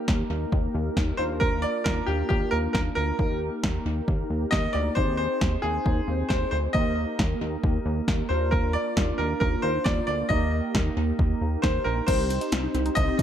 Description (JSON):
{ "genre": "synth-pop", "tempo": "135 BPM", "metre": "4/4", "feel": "straight", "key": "Eb major", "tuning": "A4 = 440 Hz", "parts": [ { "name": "mellow synth brass", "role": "accompaniment", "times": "0.0-13.2 s", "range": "Bb3 to C5", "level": "-31 LUFS", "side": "right 1 dB", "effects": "chorus, tape echo" }, { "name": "chorused synth bass", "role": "bass", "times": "0.1-13.2 s", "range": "Bb1 to C3", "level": "-28 LUFS", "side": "equal", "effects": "none" }, { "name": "punchy analog drum machine", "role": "drums", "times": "0.1-13.2 s", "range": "crash cymbal, hi-hat, kick drum, snare drum", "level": "-26 LUFS", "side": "equal", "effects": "tape echo" }, { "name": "bright grand piano", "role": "melody", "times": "1.2-13.2 s", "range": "G4 to Eb5", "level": "-28 LUFS", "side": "equal", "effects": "tape echo" }, { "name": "warm analog pad", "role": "sustained chords", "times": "12.1-13.2 s", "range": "C4 to G4", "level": "-31 LUFS", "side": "left 1 dB", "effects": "chorus" }, { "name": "wide unison pluck", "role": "arpeggios", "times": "12.1-13.2 s", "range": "C4 to F4", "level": "-35 LUFS", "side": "left 1 dB", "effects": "tape echo" } ], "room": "light reverb, digital ambience", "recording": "echo-heavy mix", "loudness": "-23 LUFS", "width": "side -10 dB against mid", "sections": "0.0-12.1 A section; 12.1-13.2 B section", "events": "none", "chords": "0.0 Eb; 1.2 Bb/Eb; 3.2 Eb; 5.0 Ab/Eb; 6.7 Eb; 8.3 Bb/Eb; 10.3 Eb; 12.1 Cm" }